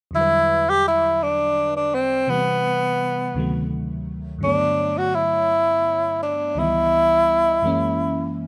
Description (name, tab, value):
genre	slow six-eight R&B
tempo	56 BPM (dotted quarters)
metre	6/8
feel	straight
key	E minor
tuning	A4 = 442 Hz
part	FM electric piano with soft pad layer	accompaniment	0.1-8.5 s	C#2 to D#5	-29 LUFS	equal	chorus
part	breathy tenor saxophone	melody	0.2-8.4 s	B3 to G4	-21 LUFS	equal	none
room	moderate studio ambience, RT60 0.5 s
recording	rough home demo mix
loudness	-20 LUFS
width	mono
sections	0.1-8.5 A section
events	none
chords	0.1 Em7; 2.3 Cmaj7; 3.3 D7b9; 4.4 Gmaj9#11; 6.6 C#m7b5; 7.6 F#7